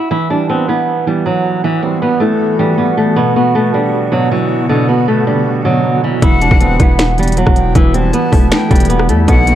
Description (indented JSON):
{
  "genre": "hip hop, trap",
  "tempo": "157 BPM",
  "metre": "4/4",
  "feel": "half-time",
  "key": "E minor",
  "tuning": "A4 = 436 Hz",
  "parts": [
    { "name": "flamenco guitar", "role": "melody", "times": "0.0-9.6 s", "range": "D3 to E4", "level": "-15 LUFS", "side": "equal", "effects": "low-pass filter, digital delay" },
    { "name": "felt-muted upright piano", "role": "accompaniment", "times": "0.1-9.6 s", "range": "B2 to F#4", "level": "-16 LUFS", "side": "right 5 dB", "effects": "low-pass filter" },
    { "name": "granular cloud pad", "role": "sustained chords", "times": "1.5-9.6 s", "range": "D3 to F#4", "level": "-20 LUFS", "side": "left 2 dB", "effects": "built-in reverb" },
    { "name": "breathy silver concert flute", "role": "second line", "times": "6.2-9.6 s", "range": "F#5 to A5", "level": "-20 LUFS", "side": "left 5 dB", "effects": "digital delay" },
    { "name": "distorted 808-style bass", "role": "bass", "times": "6.2-9.6 s", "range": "E1 to E2", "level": "-14 LUFS", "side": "equal", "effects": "distortion" },
    { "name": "trap drum kit", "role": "drums", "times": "6.2-9.6 s", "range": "finger snaps, hi-hat, kick drum, rim click, snare drum", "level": "-12 LUFS", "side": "equal", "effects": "none" }
  ],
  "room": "small room ambience",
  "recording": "dark, warm production",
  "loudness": "-10 LUFS",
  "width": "side -11 dB against mid",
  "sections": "0.1-9.6 A section",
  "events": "none",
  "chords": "0.1 Emadd9; 3.2 Bm; 6.2 Emadd9",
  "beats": "| 0.11 0.49 0.87 1.25 | 1.64 2.02 2.40 2.78 | 3.17 3.55 3.93 4.31 | 4.70 5.08 5.46 5.84 | 6.22 6.61 6.99 7.37 | 7.75 8.13 8.52 8.90 | 9.28"
}